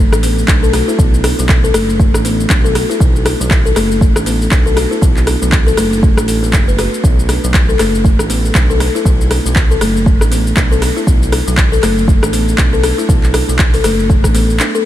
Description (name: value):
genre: afro house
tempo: 119 BPM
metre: 4/4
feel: swing 58% on 16ths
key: B minor pentatonic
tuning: A4 = 443 Hz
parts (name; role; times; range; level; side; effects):
- smooth synth bass; bass; 0.0-14.6 s; F#1 to B1; -16 LUFS; equal; sidechain pumping
- buzzing kalimba; arpeggios; 0.1-14.8 s; F#3 to B4; -16 LUFS; left 2 dB; sidechain pumping, ping-pong delay
- deep house drum kit; drums; 0.1-14.8 s; handclaps, hi-hat, rim click, shaker; -18 LUFS; equal; overdrive, studio reverb
- electronic kick drum; drums; 0.5-14.3 s; none; -12 LUFS; equal; studio reverb
room: light reverb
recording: none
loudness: -10 LUFS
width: side -13 dB against mid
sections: 0.0-14.9 A section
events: none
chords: 0.0 Bm7